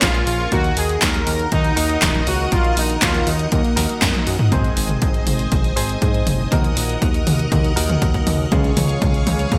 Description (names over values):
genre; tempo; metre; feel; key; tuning
italo disco; 120 BPM; 4/4; straight; unclear; A4 = 442 Hz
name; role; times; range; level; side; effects
analog synth brass; melody; 0.0-4.2 s; Bb3 to Bb4; -25 LUFS; equal; chorus, cassette tape, delay
string machine, full ensemble; sustained chords; 0.0-9.6 s; Ab4 to Eb6; -30 LUFS; equal; ensemble chorus, vintage 12-bit sampler grit
direct-recorded clean electric guitar; stabs; 0.0-9.6 s; Ab2 to C5; -29 LUFS; equal; delay
fat analog bass; bass; 0.0-9.6 s; Eb1 to Ab2; -24 LUFS; equal; none
electronic kick drum; drums; 0.0-9.6 s; none; -24 LUFS; equal; none
house drum kit; drums; 0.0-9.6 s; handclaps, hi-hat, snare drum, toms; -23 LUFS; equal; gated reverb
room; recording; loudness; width
moderate plate reverb, RT60 2.5 s; bright 1980s-style digital production; -18 LUFS; mono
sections
0.0-4.5 A section; 4.5-9.6 B section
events
drum fill 4.0-4.5, 4.5-9.6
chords
0.0 Bbm7; 0.5 Ebm; 4.5 Ab; 6.5 Ebm; 8.5 Db